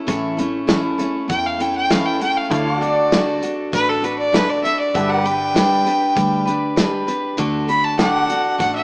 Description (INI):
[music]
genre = honky-tonk and classic country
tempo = 98 BPM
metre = 4/4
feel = straight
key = D major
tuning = A4 = 441 Hz
[part]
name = picked steel-string acoustic guitar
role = accompaniment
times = 0.0-8.8 s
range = A2 to B4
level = -21 LUFS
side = equal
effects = none
[part]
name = pedal steel guitar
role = sustained chords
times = 0.0-8.8 s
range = E4 to D5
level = -24 LUFS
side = equal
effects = none
[part]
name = vintage muted fingered electric bass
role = bass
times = 0.1-8.8 s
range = G1 to E2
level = -29 LUFS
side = equal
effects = none
[part]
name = natural country drum kit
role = drums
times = 0.1-8.7 s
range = hi-hat, kick drum, snare drum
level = -21 LUFS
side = equal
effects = none
[part]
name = clear fiddle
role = melody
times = 1.3-8.8 s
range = A4 to B5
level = -18 LUFS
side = equal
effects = none
[sound]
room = moderate plate reverb, RT60 2.4 s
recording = heard from further back in the room, small speaker sound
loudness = -16 LUFS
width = side -31 dB against mid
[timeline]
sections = 0.0-8.8 A section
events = fiddle solo 0.0-8.8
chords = 0.0 A; 2.5 D; 4.9 G; 7.4 D